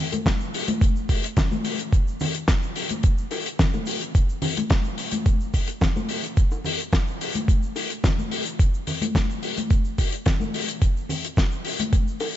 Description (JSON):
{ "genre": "nu-disco", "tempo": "108 BPM", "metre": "4/4", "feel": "straight", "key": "none", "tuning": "none", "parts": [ { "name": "damped 70s drum kit", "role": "drums", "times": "0.1-12.3 s", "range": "hi-hat, shaker, snare drum", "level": "-27 LUFS", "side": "left 2 dB", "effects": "small room ambience" }, { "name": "bongos, cabasa and congas", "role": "percussion", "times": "0.1-12.3 s", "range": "none", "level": "-30 LUFS", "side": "left 2 dB", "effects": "none" }, { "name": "electronic kick drum", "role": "drums", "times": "0.3-12.0 s", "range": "none", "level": "-21 LUFS", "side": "equal", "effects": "overdrive, small room ambience" } ], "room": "light reverb", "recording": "nothing above 7.8 kHz", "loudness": "-21 LUFS", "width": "side -12 dB against mid", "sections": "0.0-12.4 A section", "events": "none", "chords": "none" }